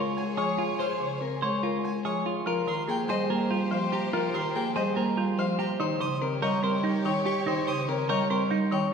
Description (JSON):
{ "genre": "classical, minimalist pattern music", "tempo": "144 BPM", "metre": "4/4", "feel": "straight", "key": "Ab major", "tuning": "A4 = 440 Hz", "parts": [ { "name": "clean electric guitar", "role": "melody", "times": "0.0-8.9 s", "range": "G4 to Db5", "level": "-30 LUFS", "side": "left 5 dB", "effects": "none" }, { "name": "folk marimba with hard mallets", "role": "accompaniment", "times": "0.0-8.9 s", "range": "Db3 to C4", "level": "-29 LUFS", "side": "right 1 dB", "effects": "none" }, { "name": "warm symphonic violin section", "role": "sustained chords", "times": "0.0-8.9 s", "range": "G4 to Db5", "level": "-36 LUFS", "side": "left 1 dB", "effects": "none" }, { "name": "semi-hollow electric guitar", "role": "arpeggios", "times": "0.0-8.8 s", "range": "Eb4 to C5", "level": "-32 LUFS", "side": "right 5 dB", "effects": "none" }, { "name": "warm violin", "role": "arpeggios", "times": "0.2-8.9 s", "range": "Eb5 to F6", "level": "-38 LUFS", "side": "left 2 dB", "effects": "none" } ], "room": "wet concert hall reverb, RT60 2.4 s", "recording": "recorded in a church or concert hall", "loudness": "-25 LUFS", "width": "side -6 dB against mid", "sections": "0.0-2.5 A section; 2.5-8.9 B section", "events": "none", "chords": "0.0 Bbm7; 2.5 Abmaj9; 5.8 Eb7" }